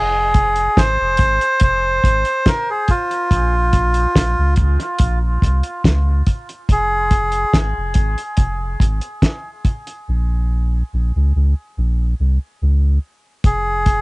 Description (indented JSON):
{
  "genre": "dub reggae",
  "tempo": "71 BPM",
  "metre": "4/4",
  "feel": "straight",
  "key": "Bb minor",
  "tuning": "A4 = 443 Hz",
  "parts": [
    { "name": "melodica", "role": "melody", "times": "0.0-7.6, 13.5-14.0 s", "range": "F4 to C5", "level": "-19 LUFS", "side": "equal", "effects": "dub echo" },
    { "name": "soft dub sub bass", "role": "bass", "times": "0.0-14.0 s", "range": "F1 to Db2", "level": "-17 LUFS", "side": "equal", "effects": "none" },
    { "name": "cloth-damped thuddy drum kit", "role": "drums", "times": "0.3-14.0 s", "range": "hi-hat, kick drum, snare drum", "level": "-15 LUFS", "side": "equal", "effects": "cassette tape" }
  ],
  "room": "light reverb",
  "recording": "home recording on cassette, nothing above 11.0 kHz",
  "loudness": "-15 LUFS",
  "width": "side -24 dB against mid",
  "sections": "0.0-14.0 A section",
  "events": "break 6.7-13.4; part muted 10.1-13.4",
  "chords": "0.0 Fm; 3.3 Bbm; 6.7 Fm; 10.1 Bbm; 13.4 Fm",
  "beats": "0.77 1.61 2.46 | 3.31 4.15 5.00 5.84 | 6.69 7.53 8.38 9.22 | 10.06 10.91 11.75 12.60 | 13.44"
}